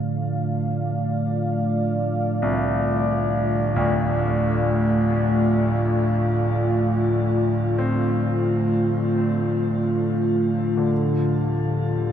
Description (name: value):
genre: dark ambient drone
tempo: free time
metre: none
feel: none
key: D minor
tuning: A4 = 440 Hz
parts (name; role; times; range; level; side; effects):
- dark analog pad; sustained chords; 0.0-12.1 s; D3 to F5; -22 LUFS; equal; chorus, shimmer reverb
- deep rumbling drone; drone; 0.0-12.1 s; A2 to D3; -24 LUFS; equal; built-in reverb
- warm concert grand piano; arpeggios; 2.4-12.1 s; C2 to C4; -28 LUFS; equal; diffuse ambient delay, shimmer reverb
room: wet huge ambient reverb, RT60 7.5 s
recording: none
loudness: -19 LUFS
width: side -9 dB against mid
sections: 0.0-12.1 A section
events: none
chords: 0.0 Dm; 10.9 Eb (rootless)